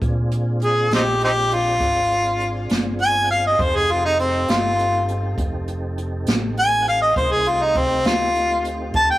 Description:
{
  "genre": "slow blues",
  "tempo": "67 BPM (dotted quarters)",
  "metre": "12/8",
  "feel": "straight",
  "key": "F mixolydian",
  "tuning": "A4 = 440 Hz",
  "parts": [
    { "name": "tonewheel organ", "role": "sustained chords", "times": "0.0-9.2 s", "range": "A3 to A4", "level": "-31 LUFS", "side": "right 1 dB", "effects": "slow rotary speaker, chorus vibrato" },
    { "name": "fingered electric bass", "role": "bass", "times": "0.0-9.2 s", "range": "F1 to Bb2", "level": "-26 LUFS", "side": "equal", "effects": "none" },
    { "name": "jazz brush drum kit", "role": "drums", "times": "0.0-9.1 s", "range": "hi-hat, kick drum, snare drum", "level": "-24 LUFS", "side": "right 1 dB", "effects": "none" },
    { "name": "warm harmonica", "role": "melody", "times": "0.6-9.2 s", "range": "C4 to A5", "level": "-18 LUFS", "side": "equal", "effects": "tape echo" }
  ],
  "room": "light reverb",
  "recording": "rough rehearsal-room recording",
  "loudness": "-17 LUFS",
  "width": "side -15 dB against mid",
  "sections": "0.0-9.2 A section",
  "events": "harmonica solo 0.0-9.2",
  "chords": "0.0 Bb9; 3.6 F9",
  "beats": "| 0.01 0.91 1.80 2.70 | 3.59 4.48 5.38 6.27 | 7.16 8.05 8.95"
}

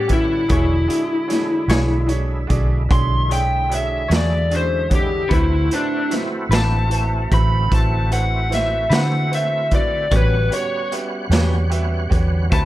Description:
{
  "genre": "slow blues",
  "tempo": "50 BPM (dotted quarters)",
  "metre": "12/8",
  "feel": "straight",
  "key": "unclear",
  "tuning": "A4 = 440 Hz",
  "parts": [
    { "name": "lead guitar through a small cranked amp", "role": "melody", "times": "0.0-12.7 s", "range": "D4 to C6", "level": "-21 LUFS", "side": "left 1 dB", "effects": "overdrive" },
    { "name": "overdriven tonewheel organ", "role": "sustained chords", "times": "0.0-12.7 s", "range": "D3 to F#5", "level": "-29 LUFS", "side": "right 1 dB", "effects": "slow rotary speaker, chorus vibrato" },
    { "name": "vintage muted fingered electric bass", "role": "bass", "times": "0.0-12.7 s", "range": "E1 to D3", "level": "-19 LUFS", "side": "equal", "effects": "none" },
    { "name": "bright concert grand piano", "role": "accompaniment", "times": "0.1-12.7 s", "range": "G#3 to F#5", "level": "-29 LUFS", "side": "right 4 dB", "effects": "none" },
    { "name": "raw garage drum kit", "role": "drums", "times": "0.1-12.7 s", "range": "hi-hat, kick drum, snare drum", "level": "-21 LUFS", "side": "equal", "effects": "none" },
    { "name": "clean electric guitar", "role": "accompaniment", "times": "0.5-12.7 s", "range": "A2 to C#5", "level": "-27 LUFS", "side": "left 3 dB", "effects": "tremolo" }
  ],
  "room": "little or no reverb",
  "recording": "dark, warm production",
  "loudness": "-16 LUFS",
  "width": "side -15 dB against mid",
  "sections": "0.0-12.7 A section",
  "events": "none",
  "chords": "0.0 A13; 0.5 E13; 5.3 D13; 10.1 A13",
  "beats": "| 0.51 1.71 2.91 4.11 | 5.31 6.51 7.72 8.92 | 10.12 11.32 12.52"
}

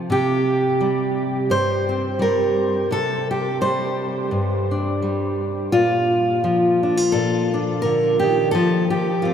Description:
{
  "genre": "folk, solo fingerstyle acoustic guitar",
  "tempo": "85 BPM",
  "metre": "4/4",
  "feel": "swing 55% on 8ths",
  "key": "unclear",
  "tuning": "A4 = 440 Hz",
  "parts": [
    { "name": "fingerpicked steel-string acoustic guitar", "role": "solo", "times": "0.0-9.3 s", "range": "G2 to C5", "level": "-18 LUFS", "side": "equal", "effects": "none" }
  ],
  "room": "wet huge ambient reverb, RT60 7.8 s",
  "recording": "in a vast, echoing space",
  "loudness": "-18 LUFS",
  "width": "side -8 dB against mid",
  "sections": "0.0-5.7 A section; 5.7-9.3 B section",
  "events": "none",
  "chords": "0.1 C5; 2.9 Csus2; 5.7 Bbmaj7; 8.5 F",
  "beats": "| 0.10 0.80 1.51 2.21 | 2.92 3.62 4.33 5.03 | 5.73 6.44 7.14 7.84 | 8.55 9.25"
}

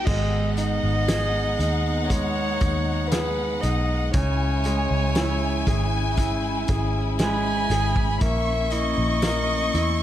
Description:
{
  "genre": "pop ballad",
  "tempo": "59 BPM",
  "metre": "4/4",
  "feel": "straight",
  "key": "G# minor",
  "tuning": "A4 = 437 Hz",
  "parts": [
    { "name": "dark violin", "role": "melody", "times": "0.0-10.0 s", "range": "B4 to G#5", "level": "-28 LUFS", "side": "left 1 dB", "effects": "none" },
    { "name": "clear grand piano", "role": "accompaniment", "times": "0.0-10.0 s", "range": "C#3 to A#4", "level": "-29 LUFS", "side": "right 2 dB", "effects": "none" },
    { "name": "dark symphonic string section", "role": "sustained chords", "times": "0.0-10.0 s", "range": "G#3 to E4", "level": "-31 LUFS", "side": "left 2 dB", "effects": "none" },
    { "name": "vintage muted fingered electric bass", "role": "bass", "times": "0.0-10.0 s", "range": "G#1 to E2", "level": "-25 LUFS", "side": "equal", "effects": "none" },
    { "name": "bright symphonic violin section", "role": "second line", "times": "0.1-10.0 s", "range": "F#5 to C#6", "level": "-30 LUFS", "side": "left 1 dB", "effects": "none" },
    { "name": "loose indie drum kit", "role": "drums", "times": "0.1-10.0 s", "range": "crash cymbal, hi-hat, kick drum, snare drum", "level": "-27 LUFS", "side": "equal", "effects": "none" },
    { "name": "tambourine", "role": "percussion", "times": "0.1-10.0 s", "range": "none", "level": "-42 LUFS", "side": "left 13 dB", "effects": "none" }
  ],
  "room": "light reverb, studio ambience",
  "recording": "dark, warm production",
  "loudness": "-21 LUFS",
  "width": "side -12 dB against mid",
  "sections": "0.1-10.0 A section",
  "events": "none",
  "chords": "0.1 G#m; 4.1 C#m; 8.2 A#dim",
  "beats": "| 0.07 1.09 2.11 3.12 | 4.14 5.16 6.17 7.19 | 8.21 9.22"
}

